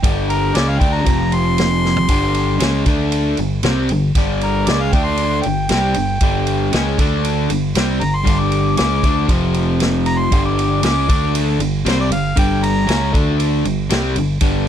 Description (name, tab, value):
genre	blues rock power trio and southern rock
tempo	117 BPM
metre	4/4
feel	straight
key	G minor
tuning	A4 = 439 Hz
part	overdriven semi-hollow guitar	riff	0.0-14.7 s	F2 to D4	-18 LUFS	equal	none
part	growling fingered electric bass	bass	0.0-14.7 s	F1 to D2	-20 LUFS	equal	overdrive
part	vintage drum kit	drums	0.0-14.5 s	kick drum, ride cymbal, snare drum, toms	-20 LUFS	equal	none
part	clear harmonica	melody	0.3-13.1 s	Bb4 to D6	-21 LUFS	equal	overdrive, slapback echo
room	little or no reverb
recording	dry, close 1970s-style studio recording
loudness	-14 LUFS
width	side -9 dB against mid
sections	0.0-14.7 A section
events	drum fill 1.8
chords	0.0 G5; 1.1 F5; 2.1 G5; 2.9 D5; 3.4 G5; 4.9 D5; 5.4 G5; 7.0 D5; 7.5 G5; 9.3 F5; 10.3 G5; 11.1 D5; 11.6 Gm; 13.1 D5; 13.7 G5